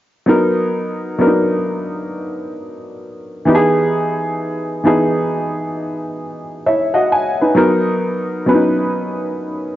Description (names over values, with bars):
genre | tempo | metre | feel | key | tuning
hip hop | 66 BPM | 4/4 | swing 64% on 16ths | B major | A4 = 439 Hz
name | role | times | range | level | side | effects
warm upright piano | accompaniment | 0.3-9.8 s | E3 to G#5 | -15 LUFS | equal | low-pass filter
room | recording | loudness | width
moderate plate reverb, RT60 2.6 s | worn, warbling old tape, cassette tape, warbly pitch drift, nothing above 7.5 kHz | -14 LUFS | side -14 dB against mid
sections
0.3-9.8 A section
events
upright piano fill 6.2-7.6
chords
0.3 Bmaj7; 3.5 Emaj7; 7.6 Bmaj7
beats
| 0.28 1.19 2.10 3.01 | 3.92 4.83 5.74 6.64 | 7.55 8.46 9.37